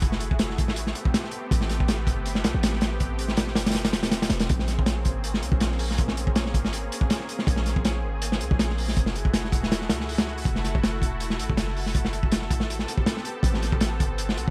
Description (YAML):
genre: drum and bass, jungle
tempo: 161 BPM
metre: 4/4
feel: swing 54% on 16ths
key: unclear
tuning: A4 = 440 Hz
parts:
  - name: lush unison pad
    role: sustained chords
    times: 0.0-14.5 s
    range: A3 to A4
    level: -36 LUFS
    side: equal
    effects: chorus
  - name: warm 808-style bass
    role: bass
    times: 0.0-14.5 s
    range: E1 to Db2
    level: -31 LUFS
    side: equal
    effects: none
  - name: crunchy breakbeat drum kit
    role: drums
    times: 0.0-14.5 s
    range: hi-hat, kick drum, snare drum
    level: -27 LUFS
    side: equal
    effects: none
room: small room ambience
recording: vinyl crackle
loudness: -25 LUFS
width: mono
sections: 0.0-14.5 A section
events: none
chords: 0.0 Gbm9; 0.8 Am9; 4.5 Bbm9; 9.0 Gbm9; 12.7 Am9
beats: | 0.02 0.39 0.77 1.14 | 1.51 1.88 2.26 2.63 | 3.00 3.38 3.75 4.12 | 4.49 4.87 5.24 5.61 | 5.98 6.36 6.73 7.10 | 7.47 7.85 8.22 8.59 | 8.96 9.34 9.71 10.08 | 10.46 10.83 11.20 11.57 | 11.95 12.32 12.69 13.06 | 13.44 13.81 14.18